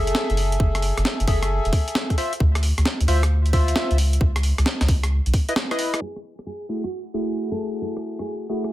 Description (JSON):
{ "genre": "UK garage, two-step garage", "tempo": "133 BPM", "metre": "4/4", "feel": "swing 67% on 16ths", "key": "F# minor", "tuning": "A4 = 440 Hz", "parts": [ { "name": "percussive organ stab", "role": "stabs", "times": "0.0-8.7 s", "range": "A3 to E5", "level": "-26 LUFS", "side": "left 1 dB", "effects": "analog chorus, tape echo" }, { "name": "soft dub sub bass", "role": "bass", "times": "0.0-5.3 s", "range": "E1 to D2", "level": "-20 LUFS", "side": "equal", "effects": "sidechain pumping" }, { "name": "breakbeat sampler-style drum kit", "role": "drums", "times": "0.1-8.7 s", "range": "hi-hat, rim click, snare drum", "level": "-26 LUFS", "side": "equal", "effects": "studio ambience" }, { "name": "electronic kick drum", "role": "drums", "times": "0.6-5.5 s", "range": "none", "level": "-20 LUFS", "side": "equal", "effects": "overdrive, studio ambience" }, { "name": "nylon-string guitar", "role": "melody", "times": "6.0-8.3 s", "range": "F#4 to A4", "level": "-34 LUFS", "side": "equal", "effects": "tape echo" } ], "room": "digital ambience", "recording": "low-pass filter", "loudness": "-20 LUFS", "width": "side -15 dB against mid", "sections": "0.0-6.0 A section; 6.0-8.7 B section", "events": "break 5.6-6.0; drum fill 5.6-6.0; band accent 5.9; filter sweep 6.0-8.7", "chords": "0.0 F#m9; 2.2 Dm9; 4.0 C#m9; 6.0 F#m9", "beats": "0.15 | 0.60 1.05 1.50 1.95 | 2.40 2.85 3.31 3.76 | 4.21 4.66 5.11 5.56 | 6.01 6.46 6.92 7.37 | 7.82 8.27 8.72" }